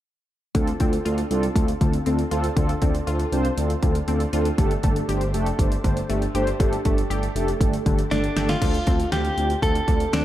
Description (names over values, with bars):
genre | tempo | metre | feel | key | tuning
synth-pop | 119 BPM | 4/4 | straight | unclear | A4 = 440 Hz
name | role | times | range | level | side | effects
mellow synth brass | accompaniment | 0.5-10.2 s | A3 to C5 | -25 LUFS | right 1 dB | chorus, shimmer reverb
wide unison pluck | arpeggios | 0.5-10.2 s | D3 to G4 | -32 LUFS | left 5 dB | slapback echo, shimmer reverb
smooth gliding synth bass | bass | 0.5-10.2 s | F1 to D2 | -25 LUFS | equal | none
pop drum kit | drums | 0.5-10.2 s | crash cymbal, hi-hat, kick drum, snare drum | -24 LUFS | equal | none
direct-recorded clean electric guitar | melody | 8.1-10.2 s | D4 to A4 | -25 LUFS | equal | slapback echo, shimmer reverb
room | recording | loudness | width
moderate lush hall reverb, RT60 1.9 s, digital ambience | dark, warm production | -20 LUFS | side -13 dB against mid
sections
0.5-8.6 A section; 8.6-10.2 B section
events
drum fill 8.1-8.6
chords
0.5 Dm7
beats
| 0.55 1.05 1.56 2.06 | 2.57 3.07 3.58 4.08 | 4.58 5.09 5.59 6.10 | 6.60 7.10 7.61 8.11 | 8.62 9.12 9.62 10.13